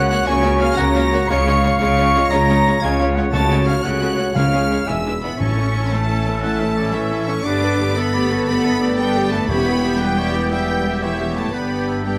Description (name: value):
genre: cinematic, heroic adventure film score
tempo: 118 BPM (dotted quarters)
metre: 6/8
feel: straight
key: Db mixolydian, A mixolydian from 5.4 s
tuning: A4 = 440 Hz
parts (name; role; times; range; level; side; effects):
- rich symphonic violin section; melody; 0.0-12.2 s; E5 to Db7; -30 LUFS; equal; none
- clear oboe; second line; 0.0-12.2 s; A4 to Db6; -30 LUFS; equal; none
- mellow hollow large flute ensemble; second line; 0.0-12.2 s; Db5 to A6; -30 LUFS; equal; none
- warm clarinet; second line; 0.0-12.2 s; B3 to Ab5; -29 LUFS; equal; none
- dark trombone section; sustained chords; 0.0-12.2 s; B2 to B3; -30 LUFS; equal; none
- mellow French horn section; sustained chords; 0.0-12.2 s; E3 to Ab4; -29 LUFS; equal; none
- dark trumpet section; stabs; 0.0-12.2 s; G4 to E5; -29 LUFS; equal; none
- rich symphonic cello section; bass; 0.0-12.2 s; E2 to D4; -26 LUFS; equal; none
- warm studio double bass section; bass; 0.0-12.2 s; E1 to Db2; -25 LUFS; equal; none
- rich symphonic violin section; second line; 0.1-12.2 s; C#4 to G5; -33 LUFS; equal; none
- clear symphonic viola section; accompaniment; 0.1-12.2 s; G3 to B4; -29 LUFS; equal; none
- timpani; percussion; 3.3-5.9, 9.5-10.0 s; E2 to Db3; -28 LUFS; equal; none
room: moderate scoring stage reverb, RT60 1.4 s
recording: none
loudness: -18 LUFS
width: mono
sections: 0.0-5.4 A section; 5.4-12.2 B section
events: none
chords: 0.0 Gb/Db; 1.3 Db; 3.3 Gbm/Db; 4.4 Db; 4.9 E7; 5.4 A; 7.5 Gadd9; 9.5 Em; 11.5 G